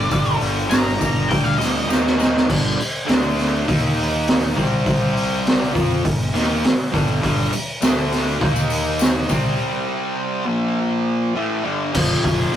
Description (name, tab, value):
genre	garage rock duo or trio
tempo	101 BPM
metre	4/4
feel	straight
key	G minor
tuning	A4 = 439 Hz
part	octave-fuzz lead guitar	melody	0.0-1.9 s	D5 to Bb5	-23 LUFS	left 1 dB	distortion
part	fuzz guitar	riff	0.0-12.6 s	F2 to F4	-21 LUFS	equal	distortion
part	fuzz fingered electric bass	bass	0.0-12.6 s	F1 to F2	-26 LUFS	equal	overdrive
part	raw garage drum kit	drums	0.1-12.6 s	crash cymbal, hi-hat, kick drum, snare drum	-19 LUFS	equal	none
part	tambourine	percussion	0.1-2.3, 7.4-9.4 s	none	-36 LUFS	left 6 dB	none
room	light reverb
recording	rough rehearsal-room recording, warm saturation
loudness	-17 LUFS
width	side -10 dB against mid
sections	0.0-2.5 A section; 2.5-11.9 B section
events	lead electric guitar solo 0.0-2.5; drum fill 1.9-2.5; break 9.6-11.9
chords	0.0 Gm; 1.9 Eb5; 2.5 G5; 3.1 D5; 3.7 Eb5; 4.6 C5; 5.8 Gm; 7.8 D5; 8.4 Eb5; 9.3 C5; 10.5 Bb5; 11.4 G5; 11.9 F5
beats	| 0.11 0.71 1.30 1.90 | 2.49 3.08 3.68 4.27 | 4.86 5.46 6.05 6.64 | 7.23 7.82 8.41 9.00 | 9.59 10.18 10.77 11.36 | 11.94 12.53